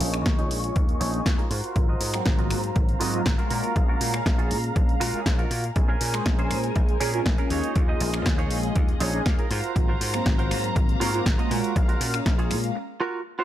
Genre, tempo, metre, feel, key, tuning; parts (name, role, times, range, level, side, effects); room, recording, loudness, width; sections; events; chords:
filtered disco house; 120 BPM; 4/4; straight; A4 = 440 Hz
mellow synth brass; accompaniment; 0.0-12.8 s; Gb3 to F5; -30 LUFS; equal; chorus, phaser, sidechain pumping, low-pass filter
warm studio violin section; sustained chords; 0.0-12.7 s; Ab4 to Db6; -33 LUFS; equal; sidechain pumping, low-pass filter
direct-recorded clean electric guitar; riff; 0.0-13.4 s; Db4 to F5; -30 LUFS; right 4 dB; lush chorus, sidechain pumping, low-pass filter
dry thumbed slap bass; bass; 0.0-12.7 s; Ab1 to Bb2; -29 LUFS; equal; sidechain pumping, low-pass filter
punchy analog drum machine; drums; 0.0-12.7 s; finger snaps, hi-hat, snare drum; -30 LUFS; equal; sidechain pumping on hats
electronic kick drum; drums; 0.3-12.4 s; -23 LUFS; equal
little or no reverb; -21 LUFS; side -12 dB against mid
0.0-13.4 A section
filter sweep 0.0-13.4; clean electric guitar fill 8.8-9.8; break 12.8-13.4
0.0 Eb7sus4; 1.5 Ab13; 3.5 Gbmaj7/Bb; 5.8 Bbm7; 7.5 Eb7sus4; 9.5 Ab13; 11.5 Gbmaj7/Bb